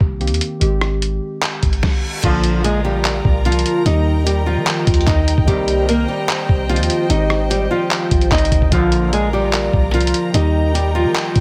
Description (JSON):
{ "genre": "hip hop, trap", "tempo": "148 BPM", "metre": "4/4", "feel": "half-time", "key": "unclear", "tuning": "A4 = 440 Hz", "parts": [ { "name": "warbly lo-fi synth keys", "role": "accompaniment", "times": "0.0-11.4 s", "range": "D3 to G4", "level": "-27 LUFS", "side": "equal", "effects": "chorus" }, { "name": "clean 808-style bass", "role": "bass", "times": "0.0-11.4 s", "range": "Ab1 to Eb3", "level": "-21 LUFS", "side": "equal", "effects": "none" }, { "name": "lo-fi sampler-style drum kit", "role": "drums", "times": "0.0-11.4 s", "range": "crash cymbal, handclaps, hi-hat, kick drum, rim click, snare drum", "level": "-21 LUFS", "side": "equal", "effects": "none" }, { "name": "reverse cymbal", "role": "sound effects", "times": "1.6-2.2 s", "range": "none", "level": "-30 LUFS", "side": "equal", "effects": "none" }, { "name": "nylon-string guitar", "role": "melody", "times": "2.2-11.4 s", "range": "F3 to Eb5", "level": "-21 LUFS", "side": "equal", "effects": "tape echo" }, { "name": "warm chamber string section", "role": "sustained chords", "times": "2.2-11.4 s", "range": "Eb4 to Bb5", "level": "-29 LUFS", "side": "equal", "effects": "none" }, { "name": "dark brass ensemble", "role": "stabs", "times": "2.2-2.6, 5.5-5.9, 8.7-9.1 s", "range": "Bb2 to F3", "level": "-31 LUFS", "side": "equal", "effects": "none" } ], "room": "little or no reverb", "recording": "none", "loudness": "-17 LUFS", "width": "mono", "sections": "0.0-2.2 A section; 2.2-11.4 B section", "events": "reverse cymbal 1.6-2.2", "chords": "0.0 Cm7; 0.6 Abmaj7; 2.2 Bb; 3.9 Eb; 5.5 Cm7; 7.1 Abmaj7; 8.7 Bb; 10.3 Eb", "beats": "0.21 | 0.61 1.02 1.42 1.83 | 2.23 2.64 3.05 3.45 | 3.86 4.26 4.67 5.07 | 5.48 5.88 6.29 6.70 | 7.10 7.50 7.91 8.32 | 8.72 9.13 9.53 9.94 | 10.34 10.75 11.15" }